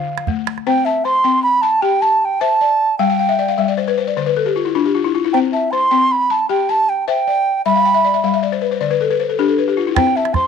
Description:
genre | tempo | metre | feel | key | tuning
west african traditional, West African string and xylophone music | 103 BPM (dotted quarters) | 12/8 | straight | C major | A4 = 440 Hz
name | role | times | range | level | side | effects
wooden flute | melody | 0.0-10.5 s | E5 to C6 | -15 LUFS | right 3 dB | none
balafon | arpeggios | 0.0-10.5 s | D3 to B5 | -17 LUFS | left 9 dB | none
calabash | percussion | 0.2-0.6, 10.0-10.4 s | none | -20 LUFS | right 6 dB | none
room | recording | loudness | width
light reverb, small room ambience | 1960s-style stereo with parts hard left and right | -14 LUFS | side -6 dB against mid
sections
0.7-10.5 A section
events
balafon fill 3.0-5.3, 7.6-10.0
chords
0.0 Dm; 0.7 C; 3.0 G5; 4.2 N.C.; 5.3 C; 7.6 G; 8.8 N.C.; 10.0 C

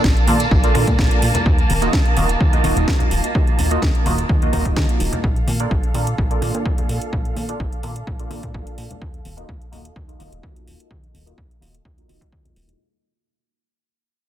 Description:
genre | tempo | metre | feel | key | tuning
filtered disco house | 127 BPM | 4/4 | straight | unclear | A4 = 440 Hz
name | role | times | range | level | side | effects
funky polysynth comp | accompaniment | 0.0-12.8 s | Bb3 to Eb5 | -25 LUFS | right 2 dB | chorus, phaser, sidechain pumping, low-pass filter
muted chamber violin section | sustained chords | 0.0-12.8 s | Bb3 to A5 | -27 LUFS | right 2 dB | sidechain pumping, low-pass filter
plucky analog bass | bass | 0.0-12.8 s | Eb1 to Bb2 | -23 LUFS | equal | sidechain pumping, low-pass filter
electronic kick drum | drums | 0.0-12.4 s | none | -19 LUFS | equal | none
house drum kit | drums | 0.0-12.8 s | hi-hat, snare drum | -27 LUFS | equal | overdrive, sidechain pumping on hats, sidechain pumping on perc
tambourine and congas | percussion | 0.0-12.8 s | none | -29 LUFS | left 3 dB | sidechain pumping on perc, low-pass filter on perc
room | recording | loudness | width
light reverb | dense, heavily limited modern master | -16 LUFS | side -11 dB against mid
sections
0.0-12.8 A section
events
fade-out 0.0-12.8; filter sweep on analog synth bass 0.0-12.8; filter sweep 0.0-12.8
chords
0.0 Bbmaj7; 1.5 Ebmadd9; 5.2 Bbmaj7; 9.0 Ebmadd9

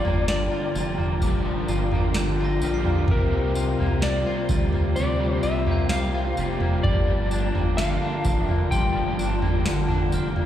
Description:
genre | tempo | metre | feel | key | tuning
dream pop | 64 BPM | 4/4 | straight | unclear | A4 = 440 Hz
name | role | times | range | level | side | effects
electric slide guitar | melody | 0.0-10.1 s | Bb4 to G5 | -30 LUFS | left 2 dB | tape echo
raw garage guitar | accompaniment | 0.0-10.5 s | G2 to G4 | -31 LUFS | right 3 dB | overdrive, tremolo, ensemble chorus
mellow tonewheel organ | sustained chords | 0.0-10.5 s | F4 to Bb5 | -31 LUFS | left 2 dB | chorus vibrato, fast rotary speaker
electric guitar at the edge of break-up | arpeggios | 0.0-10.5 s | G2 to F4 | -28 LUFS | left 2 dB | lush chorus, tape echo
round analog bass | bass | 0.0-10.5 s | F1 to D2 | -26 LUFS | equal | none
booming analog drum machine | drums | 0.1-10.5 s | kick drum, snare drum, tambourine, toms | -25 LUFS | right 1 dB | none
glockenspiel with hard plastic mallets | texture | 1.2-10.5 s | C6 to C7 | -43 LUFS | right 1 dB | tape echo
room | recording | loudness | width
light reverb | played on a big sound system in a bare room, stone room reverb | -21 LUFS | side -11 dB against mid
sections
0.0-10.5 A section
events
none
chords
0.0 Gm7; 3.1 C7sus4

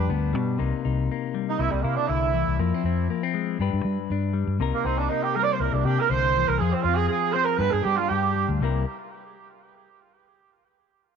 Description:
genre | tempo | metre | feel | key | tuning
highlife guitar band | 120 BPM | 4/4 | straight | unclear | A4 = 439 Hz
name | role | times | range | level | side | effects
mellow horn section | melody | 0.0-8.5 s | G3 to D5 | -25 LUFS | right 10 dB | tape echo
clean electric guitar | accompaniment | 0.0-8.8 s | G2 to B4 | -28 LUFS | left 14 dB | spring reverb
fingered electric bass | bass | 0.0-8.8 s | C2 to G3 | -25 LUFS | left 1 dB | none
room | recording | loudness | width
light reverb, small room ambience | 1960s-style stereo with parts hard left and right, nothing above 7.9 kHz | -22 LUFS | side -6 dB against mid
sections
0.6-8.6 A section; 8.6-10.6 B section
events
horn section solo 0.6-8.6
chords
0.0 G; 0.6 Cm7; 1.6 C7; 2.6 Fm; 3.6 G; 4.6 Cm7; 5.6 C7; 6.6 F5; 7.6 G; 8.6 C7

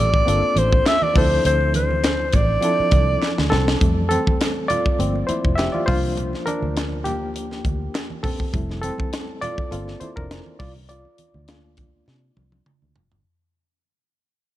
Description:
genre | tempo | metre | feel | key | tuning
lush 1970s-style soul | 102 BPM | 4/4 | swing 54% on 16ths | unclear | A4 = 439 Hz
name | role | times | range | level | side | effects
breathy alto saxophone | melody | 0.0-3.5 s | C5 to E5 | -20 LUFS | equal | slapback echo
barky reed electric piano | accompaniment | 0.0-13.3 s | E3 to E5 | -25 LUFS | left 1 dB | overdrive, fast tremolo
vintage muted fingered electric bass | bass | 0.0-13.2 s | F1 to C3 | -23 LUFS | equal | none
tight funk drum kit | drums | 0.1-13.2 s | hi-hat, kick drum, snare drum, toms | -22 LUFS | equal | none
congas | percussion | 0.4-13.2 s | none | -32 LUFS | right 4 dB | none
group handclap | percussion | 0.9-8.1 s | none | -39 LUFS | right 8 dB | none
room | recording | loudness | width
little or no reverb | dark, warm production | -18 LUFS | side -14 dB against mid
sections
0.0-3.8 A section; 3.8-13.2 B section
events
drum fill 3.2-3.8, 12.1-13.2; fade-out 3.8-13.2; reed electric piano solo 3.8-13.2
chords
0.3 Gm11; 1.2 Dm7; 3.8 Fmaj7; 5.0 Gm11; 5.9 C9sus4; 8.5 Fmaj7; 9.7 Gm11; 10.6 C9sus4

